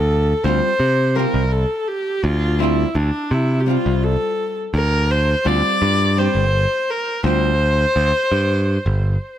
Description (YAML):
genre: progressive instrumental, band music in an uneven meter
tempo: 168 BPM (eighths)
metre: 7/8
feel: straight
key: D minor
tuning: A4 = 440 Hz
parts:
  - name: dark viola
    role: melody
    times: 0.0-9.4 s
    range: D4 to D5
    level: -20 LUFS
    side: left 1 dB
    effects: plate reverb, digital delay
  - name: modern bright picked electric bass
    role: bass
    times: 0.0-9.2 s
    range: G1 to C3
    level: -18 LUFS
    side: equal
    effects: none
  - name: archtop guitar, miked and amplified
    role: accompaniment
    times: 0.4-7.5 s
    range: G3 to G4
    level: -23 LUFS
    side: equal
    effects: double-tracked left and right
room: light reverb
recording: none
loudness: -16 LUFS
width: side -11 dB against mid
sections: 0.0-9.4 A section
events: none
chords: 0.0 Dm; 4.7 Gsus4